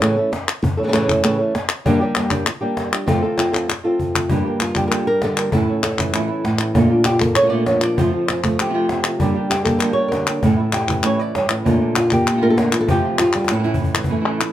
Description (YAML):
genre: flamenco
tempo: 196 BPM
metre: 4/4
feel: straight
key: A phrygian dominant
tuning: A4 = 441 Hz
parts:
  - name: flamenco guitar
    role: melody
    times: 0.0-14.5 s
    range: G2 to D5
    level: -19 LUFS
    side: right 1 dB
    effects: none
  - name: palmas hand claps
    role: percussion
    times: 0.0-14.5 s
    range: none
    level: -22 LUFS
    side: left 4 dB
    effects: none
  - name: cajon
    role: percussion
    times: 0.3-14.1 s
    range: none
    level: -24 LUFS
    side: left 1 dB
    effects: none
  - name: flamenco guitar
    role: stabs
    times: 1.8-14.5 s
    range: F2 to G4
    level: -22 LUFS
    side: right 1 dB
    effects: none
room: light reverb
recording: none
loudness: -16 LUFS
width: side -12 dB against mid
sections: 0.0-4.3 A section; 4.3-14.1 B section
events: drum fill 3.5-4.3, 13.3-14.1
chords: 0.0 A; 1.9 Gm; 3.1 F; 4.3 Gm; 5.5 A; 6.7 Bbmaj7; 8.0 F; 9.2 Gm; 10.4 A; 11.6 Bbmaj7; 12.9 F; 13.5 A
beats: 0.02 0.32 | 0.63 0.94 1.24 1.55 | 1.85 2.16 2.46 2.77 | 3.08 3.38 3.69 3.99 | 4.30 4.61 4.91 5.22 | 5.52 5.83 6.14 6.44 | 6.75 7.05 7.36 7.67 | 7.97 8.28 8.59 8.89 | 9.20 9.50 9.81 10.12 | 10.42 10.73 11.04 11.34 | 11.65 11.96 12.26 12.57 | 12.88 13.18 13.49 13.80 | 14.10 14.41